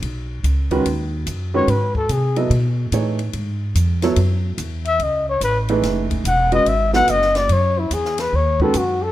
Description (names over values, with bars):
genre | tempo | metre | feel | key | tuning
modal jazz | 144 BPM | 4/4 | swing 65% on 8ths | F# dorian | A4 = 435 Hz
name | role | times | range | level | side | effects
upright bass | bass | 0.0-9.1 s | E1 to B#2 | -20 LUFS | equal | none
compact cocktail drum kit | drums | 0.0-8.9 s | hi-hat, kick drum, ride cymbal, snare drum | -30 LUFS | left 2 dB | none
warm upright piano | accompaniment | 0.7-8.7 s | D#3 to D#5 | -21 LUFS | right 3 dB | none
breathy trumpet | melody | 1.6-2.4, 4.9-9.1 s | E4 to F#5 | -18 LUFS | left 2 dB | none
room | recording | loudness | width
moderate large studio reverb, RT60 1.5 s | none | -16 LUFS | side -14 dB against mid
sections
0.0-9.1 A section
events
trumpet solo 0.0-9.1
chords
0.0 F#sus4; 0.8 G#m; 4.2 F#m11; 7.5 N.C.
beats
0.02 0.44 | 0.85 1.26 1.68 2.09 | 2.51 2.92 3.34 3.75 | 4.17 4.58 5.00 5.42 | 5.83 6.25 6.66 7.08 | 7.50 7.91 8.33 8.74